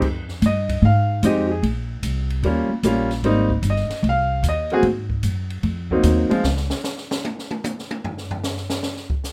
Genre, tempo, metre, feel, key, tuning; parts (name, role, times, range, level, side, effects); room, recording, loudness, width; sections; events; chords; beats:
jazz piano trio; 150 BPM; 4/4; swing 67% on 8ths; A4 = 439 Hz
clear baby grand piano; melody; 0.0-6.4 s; F3 to F5; -23 LUFS; equal
upright bass; bass; 0.0-6.7 s; G1 to Ab2; -23 LUFS; equal
open jazz drum kit; drums; 0.0-9.3 s; crash cymbal, hi-hat, kick drum, ride cymbal, snare drum, toms; -31 LUFS; equal
light reverb; -21 LUFS; mono
0.0-9.3 A section
grand piano solo 0.0-9.3; drum solo 6.4-9.3
0.0 Fm9; 1.6 Bbsus2; 2.4 Eb7; 3.2 Abmaj7; 4.8 Ab7; 6.4 N.C.
| 0.03 0.43 0.83 1.23 | 1.64 2.04 2.44 2.84 | 3.24 3.64 4.04 4.44 | 4.84 5.25 5.65 6.05 | 6.45 6.85 7.25 7.65 | 8.05 8.45 8.85 9.25